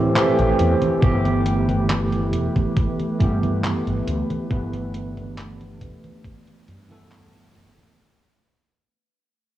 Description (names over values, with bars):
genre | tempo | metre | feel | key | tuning
vaporwave | 69 BPM | 4/4 | straight | G major | A4 = 440 Hz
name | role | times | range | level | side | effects
bell-like tine electric piano | accompaniment | 0.0-8.0 s | E3 to B4 | -22 LUFS | right 1 dB | medium stereo tremolo, lush chorus, tape echo
warbly tape-like pad | sustained chords | 0.0-8.0 s | A3 to C5 | -32 LUFS | equal | chorus, built-in reverb, vintage 12-bit sampler grit
mellow fretless electric bass | bass | 0.0-7.8 s | E1 to A2 | -24 LUFS | equal | none
detuned 8-bit digital drum machine | drums | 0.2-7.9 s | congas, handclaps, hi-hat | -28 LUFS | equal | none
electronic kick drum | drums | 1.0-6.4 s | none | -21 LUFS | equal | none
room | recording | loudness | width
light reverb, digital ambience | worn, warbling old tape, cassette tape, warbly pitch drift, studio reverb | -18 LUFS | side -13 dB against mid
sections
0.0-8.0 A section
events
fade-out 0.0-8.0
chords
0.0 Am7; 1.0 G69